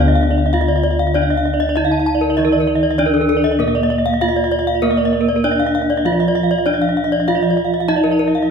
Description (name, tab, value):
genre	gamelan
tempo	98 BPM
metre	4/4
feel	straight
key	unclear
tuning	A4 = 440 Hz
part	gamelan-type bronze metallophone	melody	0.0-8.5 s	Bb3 to F4	-18 LUFS	equal	none
part	gamelan-type bronze metallophone	accompaniment	0.0-8.5 s	D3 to Bb3	-26 LUFS	right 4 dB	none
part	gamelan-type bronze metallophone	arpeggios	0.0-8.5 s	Bb4 to F5	-21 LUFS	right 5 dB	none
part	gamelan-type bossed gongs	bass	0.0-8.5 s	D2 to Bb4	-21 LUFS	left 1 dB	none
part	gamelan-type bronze metallophone	arpeggios	0.2-8.4 s	A4 to A5	-20 LUFS	left 4 dB	none
room	wet recital hall reverb, RT60 1.4 s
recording	minimal, uncompressed stereo recording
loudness	-14 LUFS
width	side -6 dB against mid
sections	0.0-8.5 A section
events	none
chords	none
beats	0.54 1.15 1.76 | 2.38 2.99 3.60 4.21 | 4.83 5.44 6.05 6.66 | 7.28 7.89 8.50